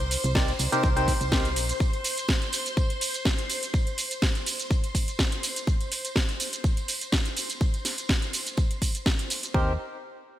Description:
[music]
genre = piano house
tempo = 124 BPM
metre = 4/4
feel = swing 54% on 16ths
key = Eb major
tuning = A4 = 440 Hz
[part]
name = string machine, violins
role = sustained chords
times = 0.0-9.6 s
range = C5 to C6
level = -35 LUFS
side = left 1 dB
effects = ensemble chorus, sidechain pumping
[part]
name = solid FM bass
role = bass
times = 0.0-1.7, 9.5-9.8 s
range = Bb1 to Eb2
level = -29 LUFS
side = equal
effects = sidechain pumping
[part]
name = house drum kit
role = drums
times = 0.0-9.5 s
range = hi-hat, shaker, snare drum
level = -29 LUFS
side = right 1 dB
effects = none
[part]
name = tambourine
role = percussion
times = 0.0-9.5 s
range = none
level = -39 LUFS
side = right 3 dB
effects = none
[part]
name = percussive organ stab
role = riff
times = 0.3-1.5, 9.5-9.7 s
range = C3 to D5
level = -28 LUFS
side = equal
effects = wide subtle chorus, sidechain pumping, digital delay
[part]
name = electronic kick drum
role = drums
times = 0.4-9.6 s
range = none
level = -25 LUFS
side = equal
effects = none
[sound]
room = light reverb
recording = bright 1980s-style digital production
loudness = -24 LUFS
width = side -13 dB against mid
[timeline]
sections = 0.0-9.5 A section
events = none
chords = 0.0 Cm7; 1.8 N.C.; 9.5 Eb6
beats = 0.35 0.83 1.32 | 1.80 2.29 2.77 3.25 | 3.74 4.22 4.71 5.19 | 5.67 6.16 6.64 7.12 | 7.61 8.09 8.58 9.06 | 9.54

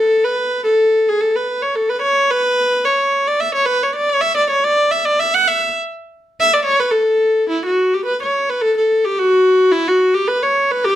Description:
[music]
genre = balkan folk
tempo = 109 BPM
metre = 2/4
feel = swing 55% on 16ths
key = A major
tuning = A4 = 440 Hz
[part]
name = rich viola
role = solo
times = 0.0-11.0 s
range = E4 to F#5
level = -13 LUFS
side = equal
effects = slapback echo
[sound]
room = moderate studio ambience, RT60 0.5 s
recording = dark, warm production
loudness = -13 LUFS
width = side -12 dB against mid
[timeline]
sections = 0.0-7.5 A section; 7.5-11.0 B section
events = viola solo 0.0-7.5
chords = none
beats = 0.37 | 0.92 1.47 | 2.02 2.57 | 3.12 3.67 | 4.21 4.76 | 5.31 5.86 | 6.41 6.96 | 7.50 8.05 | 8.60 9.15 | 9.70 10.25 | 10.80

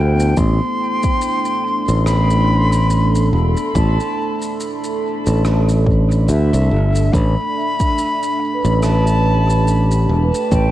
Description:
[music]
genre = ambient dub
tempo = 71 BPM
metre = 4/4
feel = swing 58% on 16ths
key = A minor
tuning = A4 = 440 Hz
[part]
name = silver concert flute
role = melody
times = 0.0-10.7 s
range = E5 to C6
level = -21 LUFS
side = left 1 dB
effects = cassette tape, tape echo
[part]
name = deep dark ambient pad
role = sustained chords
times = 0.6-10.7 s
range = A3 to B4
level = -24 LUFS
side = right 2 dB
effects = chorus, built-in reverb
[part]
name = vibraphone with soft mallets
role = arpeggios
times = 0.0-10.7 s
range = B3 to C5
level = -27 LUFS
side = equal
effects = vintage 12-bit sampler grit, tape echo
[part]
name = modern bright fingered electric bass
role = bass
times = 0.0-10.7 s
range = E1 to D2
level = -14 LUFS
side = equal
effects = none
[part]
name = shaker and rim click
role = drums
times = 0.2-10.7 s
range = none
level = -32 LUFS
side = equal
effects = cassette tape, dub echo
[part]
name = electronic kick drum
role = drums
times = 0.4-10.7 s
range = none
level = -19 LUFS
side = equal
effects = overdrive, cassette tape
[sound]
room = small room ambience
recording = home recording on cassette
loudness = -14 LUFS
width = side -14 dB against mid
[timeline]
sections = 0.0-10.7 A section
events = none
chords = 0.0 Am7; 7.1 Em (rootless)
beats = | 0.37 1.22 2.06 2.91 | 3.75 4.60 5.45 6.29 | 7.13 7.98 8.82 9.67 | 10.52

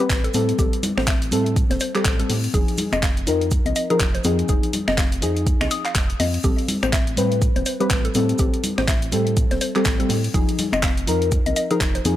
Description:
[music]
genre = deep house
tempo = 123 BPM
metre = 4/4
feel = swing 59% on 16ths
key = A minor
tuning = A4 = 440 Hz
[part]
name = mallet-like synth pluck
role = arpeggios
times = 0.0-12.0 s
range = G4 to Eb6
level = -28 LUFS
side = left 1 dB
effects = chorus, sidechain pumping, tape echo
[part]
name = deep mellow chord stab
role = stabs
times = 0.0-12.2 s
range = F3 to B4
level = -23 LUFS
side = left 1 dB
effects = lush chorus, sidechain pumping, tape echo
[part]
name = deep house drum kit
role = drums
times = 0.0-12.2 s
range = finger snaps, handclaps, hi-hat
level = -27 LUFS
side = left 1 dB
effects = overdrive
[part]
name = round analog bass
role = bass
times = 0.1-12.2 s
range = E1 to A2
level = -25 LUFS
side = right 1 dB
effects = sidechain pumping
[part]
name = crisp fusion drum kit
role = drums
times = 0.1-12.2 s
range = hi-hat, shaker, snare drum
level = -34 LUFS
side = right 1 dB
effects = none
[part]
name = electronic kick drum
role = drums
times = 0.1-11.9 s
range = none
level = -21 LUFS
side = right 1 dB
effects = overdrive
[part]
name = congas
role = percussion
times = 0.3-12.2 s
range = none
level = -28 LUFS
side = left 4 dB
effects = none
[sound]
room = small room reverb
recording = dry, gritty hardware recording, transformer saturation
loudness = -18 LUFS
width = side -13 dB against mid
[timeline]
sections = 0.0-12.2 A section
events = none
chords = 0.0 Am7; 2.5 Fm7; 6.4 Am7; 10.3 Fm7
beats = 0.10 | 0.59 1.08 1.56 2.05 | 2.54 3.03 3.52 4.00 | 4.49 4.98 5.47 5.95 | 6.44 6.93 7.42 7.91 | 8.39 8.88 9.37 9.86 | 10.34 10.83 11.32 11.81

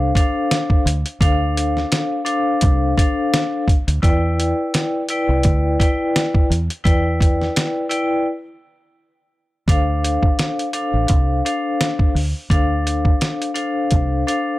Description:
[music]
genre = hip hop, boom-bap hip-hop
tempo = 85 BPM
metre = 4/4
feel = swing 55% on 16ths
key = D dorian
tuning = A4 = 441 Hz
[part]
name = vibraphone with medium hard mallets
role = accompaniment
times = 0.0-14.6 s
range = D4 to G5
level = -20 LUFS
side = left 1 dB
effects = cassette tape
[part]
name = deep dub fingered electric bass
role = bass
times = 0.0-14.2 s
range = A1 to E2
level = -20 LUFS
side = equal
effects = none
[part]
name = dusty soul sampler-style drum kit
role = drums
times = 0.2-14.5 s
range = hi-hat, kick drum, snare drum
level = -18 LUFS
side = equal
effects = none
[sound]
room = little or no reverb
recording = none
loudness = -16 LUFS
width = side -17 dB against mid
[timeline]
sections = 0.0-9.7 A section; 9.7-14.6 B section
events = break 8.3-9.7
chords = 0.0 Dm7; 4.0 Em7; 9.7 Dm7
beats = 0.50 | 1.21 1.91 2.62 3.33 | 4.03 4.74 5.44 6.15 | 6.85 7.56 8.27 8.97 | 9.68 10.38 11.09 11.80 | 12.50 13.21 13.91

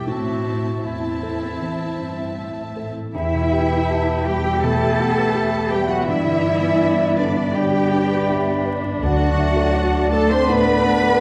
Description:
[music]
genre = cinematic, emotional film score for orchestra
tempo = 80 BPM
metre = 4/4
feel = uneven beats, rubato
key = E minor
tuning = A4 = 440 Hz
[part]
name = clear clarinet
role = second line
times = 0.0-11.2 s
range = E4 to G5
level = -31 LUFS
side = equal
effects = none
[part]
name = warm symphonic violin section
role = second line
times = 0.0-11.2 s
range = D5 to C6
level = -33 LUFS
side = equal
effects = none
[part]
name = dark concert grand piano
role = accompaniment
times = 0.0-11.2 s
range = D2 to E5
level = -27 LUFS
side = equal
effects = none
[part]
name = warm symphonic viola section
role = accompaniment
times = 0.0-11.2 s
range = A3 to G4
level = -30 LUFS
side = equal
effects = none
[part]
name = concert harp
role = arpeggios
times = 0.0-11.2 s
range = E2 to E6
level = -35 LUFS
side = equal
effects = none
[part]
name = warm symphonic cello section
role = bass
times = 0.0-11.2 s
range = E2 to C5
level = -26 LUFS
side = equal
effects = none
[part]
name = warm oboe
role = second line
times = 3.1-11.2 s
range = A5 to B5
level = -33 LUFS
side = equal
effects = none
[part]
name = warm French horn section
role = sustained chords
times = 3.1-11.2 s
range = D3 to C4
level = -27 LUFS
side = equal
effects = none
[part]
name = dark symphonic violin section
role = melody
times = 3.2-11.2 s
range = D5 to C6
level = -32 LUFS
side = equal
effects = none
[part]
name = mellow hollow concert flute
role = second line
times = 3.2-11.2 s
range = D5 to A5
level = -30 LUFS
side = equal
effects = none
[part]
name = warm symphonic double bass section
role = bass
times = 3.2-11.2 s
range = D2 to G2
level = -29 LUFS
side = equal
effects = none
[sound]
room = wet concert hall reverb, RT60 2.0 s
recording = vinyl crackle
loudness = -20 LUFS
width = mono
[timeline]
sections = 0.0-3.2 A section; 3.2-11.2 A section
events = none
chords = 0.1 Am; 3.2 Em; 6.1 G; 9.0 D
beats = | 0.08 0.86 1.62 2.39 | 3.16 3.90 4.63 5.36 | 6.08 6.80 7.56 8.30 | 9.03 9.76 10.48

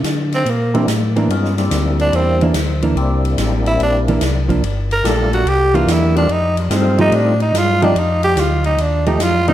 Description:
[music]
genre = soul jazz organ trio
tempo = 144 BPM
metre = 4/4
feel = swing 67% on 8ths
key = C mixolydian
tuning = A4 = 440 Hz
[part]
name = hollow-body jazz guitar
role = accompaniment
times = 0.0-9.5 s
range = E3 to G4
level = -20 LUFS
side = right 3 dB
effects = none
[part]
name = mellow tonewheel organ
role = bass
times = 0.0-9.5 s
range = G1 to D3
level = -18 LUFS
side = left 1 dB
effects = chorus vibrato, slow rotary speaker
[part]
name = swinging big-band drum kit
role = drums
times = 0.0-9.5 s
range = hi-hat, kick drum, ride cymbal, snare drum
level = -24 LUFS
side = left 1 dB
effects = none
[part]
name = growling tenor saxophone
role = melody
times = 0.3-9.5 s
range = G3 to Bb4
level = -18 LUFS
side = right 1 dB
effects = diffuse ambient delay
[part]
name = percussive tonewheel organ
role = melody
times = 0.7-9.5 s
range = G3 to F4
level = -22 LUFS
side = left 2 dB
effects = slow rotary speaker, overdrive, chorus vibrato, diffuse ambient delay
[sound]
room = wet plate reverb, RT60 1.3 s, small room ambience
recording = dreamy mix soaked in reverb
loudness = -13 LUFS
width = side -12 dB against mid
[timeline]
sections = 0.0-9.5 A section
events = tenor saxophone solo 0.0-9.5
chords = 0.0 C9; 4.6 Gm7; 5.5 C9; 6.3 F9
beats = 0.04 0.46 0.88 | 1.30 1.71 2.13 2.55 | 2.96 3.38 3.80 4.21 | 4.63 5.05 5.46 5.88 | 6.29 6.71 7.13 7.54 | 7.96 8.37 8.79 9.20

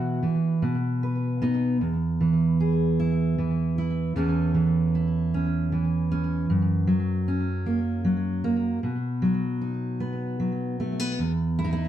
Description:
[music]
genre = folk, solo fingerstyle acoustic guitar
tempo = 51 BPM (dotted quarters)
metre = 6/8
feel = straight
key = E major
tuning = A4 = 440 Hz
[part]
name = fingerpicked steel-string acoustic guitar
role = solo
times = 0.0-11.9 s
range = E2 to B4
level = -23 LUFS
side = right 1 dB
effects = slapback echo
[sound]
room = light reverb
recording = dark, warm production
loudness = -23 LUFS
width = side -11 dB against mid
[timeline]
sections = 0.0-1.8 A section; 1.8-11.2 B section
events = none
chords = 0.0 Bsus4; 0.6 B; 1.8 E; 4.2 A/E; 6.5 F#7; 8.8 B; 11.2 N.C.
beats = 0.62 | 1.80 2.99 | 4.16 5.32 | 6.49 7.65 | 8.82 10.00 | 11.18

